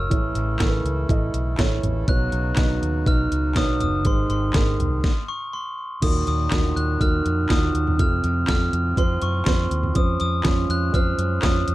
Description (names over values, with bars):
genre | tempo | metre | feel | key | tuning
piano-driven pop | 122 BPM | 4/4 | straight | unclear | A4 = 436 Hz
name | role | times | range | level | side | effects
glockenspiel with hard plastic mallets | melody | 0.0-11.7 s | C6 to Gb6 | -28 LUFS | left 2 dB | none
felt-muted upright piano | accompaniment | 0.0-11.7 s | Ab2 to Eb5 | -26 LUFS | right 4 dB | none
hand-pumped harmonium | sustained chords | 0.0-11.7 s | A2 to A4 | -35 LUFS | left 1 dB | none
vintage muted fingered electric bass | bass | 0.0-11.7 s | Gb1 to Gb2 | -24 LUFS | equal | none
pop drum kit | drums | 0.1-11.7 s | crash cymbal, handclaps, hi-hat, kick drum, snare drum, toms | -22 LUFS | equal | none
room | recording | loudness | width
little or no reverb | dark, warm production | -19 LUFS | side -16 dB against mid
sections
0.0-6.0 A section; 6.0-11.7 B section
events
stop 5.0-6.0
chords
0.1 A; 2.1 Cbadd9; 4.1 Ab; 6.0 Ebm; 8.0 F; 10.0 Dbmaj7/F